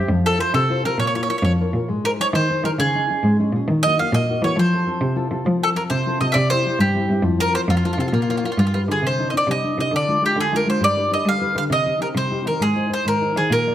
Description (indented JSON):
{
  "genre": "italian folk, Italian serenade",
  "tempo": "134 BPM (dotted quarters)",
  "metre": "6/8",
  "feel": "straight",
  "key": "C minor from 9.0 s",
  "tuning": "A4 = 443 Hz",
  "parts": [
    { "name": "mandolin", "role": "melody", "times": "0.0-13.7 s", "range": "F4 to F5", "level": "-20 LUFS", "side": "right 1 dB", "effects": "none" },
    { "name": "nylon-string guitar", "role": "accompaniment", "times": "0.0-13.7 s", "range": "C3 to D5", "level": "-24 LUFS", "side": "left 3 dB", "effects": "none" },
    { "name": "warm cello", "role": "bass", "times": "0.0-13.7 s", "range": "F2 to Ab3", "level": "-22 LUFS", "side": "right 1 dB", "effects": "none" }
  ],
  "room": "moderate recital hall reverb, RT60 1.5 s",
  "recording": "close, detailed microphones",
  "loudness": "-17 LUFS",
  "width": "side -11 dB against mid",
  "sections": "0.0-9.0 A section; 9.0-13.7 B section",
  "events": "none",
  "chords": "0.1 F; 1.0 Bbm; 1.9 Ab; 2.8 Dbsus2; 3.7 Ebm; 4.6 F; 6.4 C; 7.2 Fsus4; 7.7 F; 8.1 Bbm; 8.6 G7; 9.0 Cmadd9; 9.9 Ddim; 10.8 G; 11.7 Cm; 12.6 Ab"
}